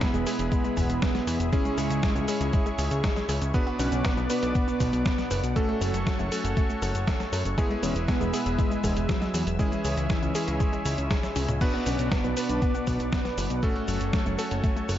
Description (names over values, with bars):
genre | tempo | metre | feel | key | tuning
italo disco | 119 BPM | 4/4 | straight | B dorian | A4 = 440 Hz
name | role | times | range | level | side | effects
wide unison lead | melody | 0.0-14.9 s | E3 to D4 | -31 LUFS | equal | digital delay
warm analog pad | sustained chords | 0.0-15.0 s | G#4 to E6 | -36 LUFS | left 1 dB | chorus
wide unison pluck | arpeggios | 0.0-15.0 s | G#3 to C#5 | -36 LUFS | left 2 dB | none
clear electric grand piano | stabs | 0.0-15.0 s | G#3 to B4 | -32 LUFS | right 1 dB | none
dusty soul sampler-style drum kit | drums | 0.0-15.0 s | cabasa, crash cymbal, hi-hat, snare drum, toms | -33 LUFS | equal | small room reverb
electronic kick drum | drums | 0.0-14.7 s | none | -27 LUFS | equal | overdrive, small room reverb
fat analog bass | bass | 0.1-15.0 s | E1 to F#2 | -29 LUFS | equal | none
room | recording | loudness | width
light reverb, digital ambience | dark, warm production, nothing above 7.6 kHz | -24 LUFS | side -12 dB against mid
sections
0.0-15.0 A section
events
drum fill 11.4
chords
0.0 E; 1.5 C#m; 3.5 Bm; 5.6 F#m; 7.6 E; 9.6 C#m; 11.6 Bm; 13.6 F#m